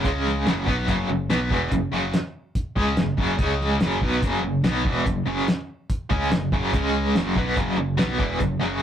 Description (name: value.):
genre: classic rock.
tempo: 144 BPM.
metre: 4/4.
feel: straight.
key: unclear.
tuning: A4 = 440 Hz.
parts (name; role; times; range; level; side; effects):
cranked stack guitar; riff; 0.0-8.8 s; E2 to C#4; -22 LUFS; equal; overdrive, tremolo.
fingered electric bass; bass; 0.0-8.8 s; E1 to C#2; -30 LUFS; right 1 dB; none.
cloth-damped thuddy drum kit; drums; 0.0-8.7 s; hi-hat, kick drum, snare drum; -25 LUFS; equal; none.
room: moderate small room reverb, RT60 0.6 s.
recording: rough rehearsal-room recording, warm saturation.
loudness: -21 LUFS.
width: side -9 dB against mid.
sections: 0.0-8.8 A section.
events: none.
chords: 0.0 C#5; 0.5 F#5; 3.4 C#5; 3.8 F#5; 6.7 C#5; 7.1 F#5.